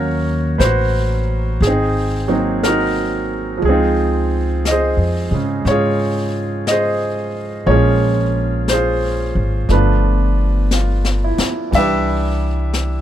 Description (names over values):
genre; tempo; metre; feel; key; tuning
jazz ballad; 59 BPM; 4/4; swing 66% on 8ths; unclear; A4 = 440 Hz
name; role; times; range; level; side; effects
clear grand piano; accompaniment; 0.0-13.0 s; Db3 to F5; -18 LUFS; right 2 dB; none
upright bass; bass; 0.0-13.0 s; G1 to Ab2; -18 LUFS; equal; none
jazz brush drum kit; drums; 0.6-13.0 s; brushed snare drum, hi-hat, kick drum, ride cymbal, snare drum; -25 LUFS; left 3 dB; none
room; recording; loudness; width
little or no reverb; close, detailed microphones; -15 LUFS; side -11 dB against mid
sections
0.0-11.7 A section; 11.7-13.0 B section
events
drum fill 10.7-11.7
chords
0.0 Ebm7; 1.6 Ab9; 3.6 Dbmaj9; 7.7 Bbm7; 9.7 G9; 11.7 Cmaj9